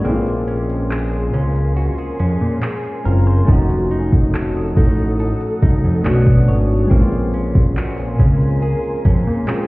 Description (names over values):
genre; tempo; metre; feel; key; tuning
contemporary R&B; 70 BPM; 4/4; straight; Bb minor; A4 = 440 Hz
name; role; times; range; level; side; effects
soft electric-piano-like synth keys; accompaniment; 0.0-9.7 s; Ab3 to Gb4; -22 LUFS; left 1 dB; chorus
ethereal airy pad; sustained chords; 0.0-9.7 s; A4 to Eb6; -30 LUFS; equal; ensemble chorus, built-in reverb, sidechain pumping
direct-recorded clean electric guitar; arpeggios; 0.0-9.7 s; F3 to C#5; -26 LUFS; right 1 dB; digital delay
fat analog bass; bass; 0.1-9.5 s; F1 to Bb2; -16 LUFS; equal; none
smooth R&B drum kit; drums; 0.1-9.7 s; handclaps, hi-hat, kick drum; -15 LUFS; equal; vintage 12-bit sampler grit
room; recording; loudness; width
little or no reverb; heard muffled through a wall, stone room reverb, EQ; -14 LUFS; side -21 dB against mid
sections
0.0-9.7 A section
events
break 0.0-3.5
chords
0.1 Bbm9; 3.5 F7b9b13; 6.1 Bm9; 6.9 Bbm9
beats
| 0.05 0.91 1.77 2.62 | 3.48 4.34 5.20 6.05 | 6.91 7.77 8.62 9.48